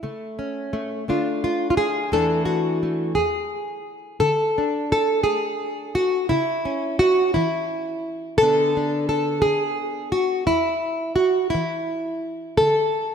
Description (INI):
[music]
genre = folk, solo fingerstyle acoustic guitar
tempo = 57 BPM (dotted quarters)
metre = 6/8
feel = straight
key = unclear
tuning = A4 = 439 Hz
[part]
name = nylon-string guitar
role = solo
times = 0.0-13.1 s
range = E2 to A4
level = -20 LUFS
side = equal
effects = analog chorus
[sound]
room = wet plate reverb, RT60 2.5 s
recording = dreamy mix soaked in reverb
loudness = -20 LUFS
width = side -7 dB against mid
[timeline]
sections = 0.0-4.2 A section; 4.2-13.1 B section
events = none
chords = 0.0 A/C#; 1.1 Dm; 2.1 E7sus4; 3.2 N.C.; 4.2 D5; 6.3 C#madd11; 8.4 Bm; 10.5 N.C.; 12.6 D5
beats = | 0.01 1.06 | 2.11 3.16 | 4.22 5.27 | 6.32 7.37 | 8.41 9.45 | 10.49 11.54 | 12.60